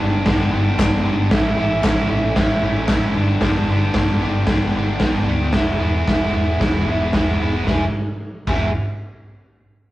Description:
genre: garage rock duo or trio.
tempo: 113 BPM.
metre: 4/4.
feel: straight.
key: unclear.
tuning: A4 = 440 Hz.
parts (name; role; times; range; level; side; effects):
biting overdriven guitar; riff; 0.0-8.7 s; G2 to G#4; -22 LUFS; equal; none.
overdriven fingered electric bass; bass; 0.0-8.7 s; E1 to D2; -23 LUFS; equal; none.
raw garage drum kit; drums; 0.3-8.6 s; crash cymbal, hi-hat, kick drum, snare drum; -19 LUFS; equal; none.
group handclap; percussion; 0.8-3.0 s; none; -31 LUFS; left 2 dB; none.
room: moderate stone room reverb, RT60 1.0 s.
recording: rough rehearsal-room recording, tube saturation, cassette tape.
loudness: -16 LUFS.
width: side -16 dB against mid.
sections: 0.0-7.7 A section; 7.7-9.8 B section.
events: none.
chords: 0.0 G; 1.3 A; 3.2 G; 5.5 E.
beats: 0.26 0.78 | 1.31 1.84 2.37 2.90 | 3.42 3.96 4.49 5.01 | 5.55 6.08 6.61 7.14 | 7.67 8.21.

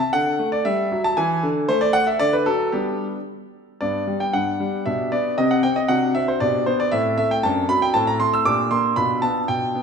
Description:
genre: classical-period piano sonatina.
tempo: 116 BPM.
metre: 2/4.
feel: straight.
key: G major.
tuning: A4 = 440 Hz.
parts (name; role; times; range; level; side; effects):
warm concert grand piano; solo; 0.0-9.8 s; F#2 to E6; -18 LUFS; equal; none.
room: wet recital hall reverb, RT60 1.7 s.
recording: recorded in a church or concert hall.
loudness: -18 LUFS.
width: side -6 dB against mid.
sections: 0.0-3.8 A section; 3.8-9.8 B section.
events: none.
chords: 0.1 D; 0.7 Em/G; 1.2 E7; 1.7 N.C.; 2.2 D; 2.7 G; 4.9 G/B; 5.4 C5; 5.9 D7/C; 6.4 G/B; 6.9 Am; 7.4 D7/F#; 7.9 Am; 8.5 Gm/Bb; 9.0 G7/B.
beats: 0.13 | 0.65 1.17 | 1.68 2.20 | 2.73 3.27 | 3.81 4.34 | 4.86 5.38 | 5.90 6.41 | 6.93 7.44 | 7.95 8.46 | 8.98 9.49.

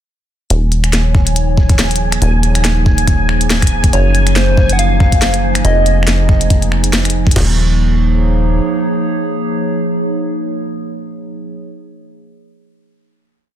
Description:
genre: IDM.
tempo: 140 BPM.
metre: 4/4.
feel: swing 56% on 16ths.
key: Eb dorian.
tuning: A4 = 440 Hz.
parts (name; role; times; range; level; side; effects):
warbly tape-like pad; sustained chords; 0.8-11.5 s; F3 to Db5; -19 LUFS; right 2 dB; chorus, built-in reverb, sidechain pumping.
deep acid bass; bass; 0.5-8.6 s; Eb1 to Gb1; -14 LUFS; equal; none.
glitchy drum kit; drums; 0.5-7.4 s; finger snaps, hi-hat, snare drum; -18 LUFS; left 1 dB; studio reverb.
bubbling stepped-filter texture; texture; 0.5-7.4 s; Ab5; -24 LUFS; right 1 dB; chorus, built-in reverb.
jungle sampler-style drum kit; drums; 1.1-7.5 s; crash cymbal, kick drum, snare drum; -13 LUFS; equal; studio reverb.
soft struck synth lead; melody; 3.9-6.9 s; C5 to Gb5; -19 LUFS; equal; chorus, ping-pong delay.
room: little or no reverb.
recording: dense, heavily limited modern master.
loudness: -11 LUFS.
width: side -11 dB against mid.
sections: 0.5-7.4 groove; 7.4-10.8 final chord.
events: none.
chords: 0.5 Eb5; 3.9 Gbmaj9#11; 5.6 Fm7; 7.4 Eb5.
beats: | 0.50 0.93 1.36 1.79 | 2.22 2.65 3.08 3.50 | 3.93 4.36 4.79 5.22 | 5.65 6.08 6.50 6.93 | 7.36 7.79 8.22 8.65 | 9.07 9.50 9.93 10.36.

